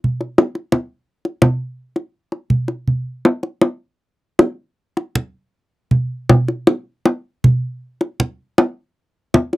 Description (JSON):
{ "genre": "gamelan", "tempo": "79-88 BPM", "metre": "4/4", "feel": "straight", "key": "none", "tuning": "none", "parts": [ { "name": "kendang", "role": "percussion", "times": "0.0-9.6 s", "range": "none", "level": "-14 LUFS", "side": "equal", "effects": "none" } ], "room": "moderate booth ambience, RT60 0.2 s", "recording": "dry, close 1970s-style studio recording", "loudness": "-17 LUFS", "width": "side -18 dB against mid", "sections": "0.0-3.6 A section; 3.6-9.6 B section", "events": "none", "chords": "none", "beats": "0.04 | 0.73 1.43 2.15 2.89 | 3.64 4.40 5.16 5.92 | 6.67 7.43 8.19 8.95" }